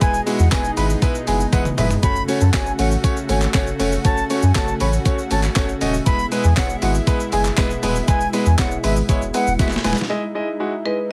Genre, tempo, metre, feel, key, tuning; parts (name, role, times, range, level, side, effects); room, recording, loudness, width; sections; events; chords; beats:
dance-pop; 119 BPM; 4/4; straight; E major; A4 = 440 Hz
silver concert flute; melody; 0.0-9.9 s; E5 to B5; -27 LUFS; equal; sidechain pumping, analog delay
clear concert grand piano; accompaniment; 0.0-11.0 s; G#3 to D#5; -25 LUFS; equal; sidechain pumping
lush unison pad; sustained chords; 0.0-11.1 s; B2 to F#4; -29 LUFS; equal; chorus, sidechain pumping
warm sub bass; bass; 0.0-9.9 s; D#1 to F#2; -23 LUFS; equal; sidechain pumping
clean 12-bit digital drum machine; drums; 0.0-10.1 s; handclaps, hi-hat, kick drum, shaker, snare drum, toms; -23 LUFS; equal
tambourine; percussion; 0.5-10.0 s; -42 LUFS; equal
marimba with hard mallets; melody; 10.9-11.1 s; B4; -24 LUFS; equal
light reverb; heavily compressed radio sound, multiband compression; -19 LUFS; mono
0.0-10.1 A section; 10.1-11.1 B section
drop 0.0-10.1; drum fill 1.5-2.0, 9.6-10.1
0.0 E; 2.0 F#m; 6.1 E; 10.1 Emaj7
| 0.01 0.52 1.02 1.53 | 2.03 2.54 3.04 3.54 | 4.05 4.55 5.06 5.56 | 6.06 6.57 7.07 7.58 | 8.08 8.59 9.09 9.59 | 10.10 10.60 11.11